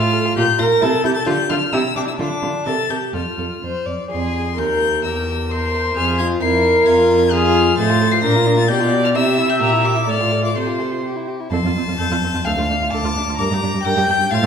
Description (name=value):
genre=quick classical-period movement for string quartet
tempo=130 BPM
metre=2/4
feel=rubato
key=F major, F minor from 4.1 s, F major from 7.8 s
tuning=A4 = 437 Hz
part: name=warm violin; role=melody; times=0.0-14.5 s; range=Bb5 to C7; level=-22 LUFS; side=left 8 dB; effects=none
part: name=warm violin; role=second line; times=0.0-14.5 s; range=D4 to Bb5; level=-23 LUFS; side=left 3 dB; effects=none
part: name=rich viola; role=accompaniment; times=0.0-14.5 s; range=C4 to E5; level=-20 LUFS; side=right 1 dB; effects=none
part: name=rich cello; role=bass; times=0.0-14.5 s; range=D2 to D3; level=-20 LUFS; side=right 2 dB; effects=none
room=wet recital hall reverb, RT60 1.4 s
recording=heard from further back in the room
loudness=-15 LUFS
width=side -7 dB against mid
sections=0.0-4.1 A section; 4.1-11.5 B section; 11.5-14.5 A section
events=none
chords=0.4 Gm7/Bb; 0.8 C5; 1.3 Dmadd11; 1.7 C; 2.2 Dm; 2.7 C5; 3.1 F5; 4.1 Fm; 4.6 Eb; 5.0 C7/E; 6.0 Fm; 6.4 C7/F; 6.9 Fm; 7.8 F/A; 8.2 Bb; 8.7 G7/B; 9.2 C; 9.6 Gm6/Bb; 10.1 F/A; 10.6 F/C; 11.5 F; 12.5 Dm; 13.4 Gm